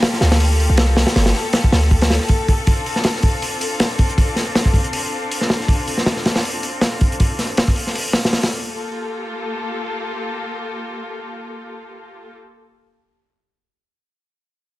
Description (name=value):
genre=drum and bass, jungle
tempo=159 BPM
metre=4/4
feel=swing 55% on 16ths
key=G minor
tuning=A4 = 439 Hz
part: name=warm studio string section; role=sustained chords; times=0.0-12.3 s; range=Bb3 to A4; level=-25 LUFS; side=left 2 dB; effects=vintage 12-bit sampler grit, low-pass filter
part: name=crunchy breakbeat drum kit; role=drums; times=0.0-8.5 s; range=hi-hat, kick drum, snare drum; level=-17 LUFS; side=equal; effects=none
part: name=warm 808-style bass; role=bass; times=0.2-2.2 s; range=G1 to D2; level=-15 LUFS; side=equal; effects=tube saturation
room=small room ambience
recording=none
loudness=-16 LUFS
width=side -17 dB against mid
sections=0.0-8.7 A section; 8.7-11.7 B section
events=none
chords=0.0 Gm9; 2.7 Dm7; 8.7 Gm9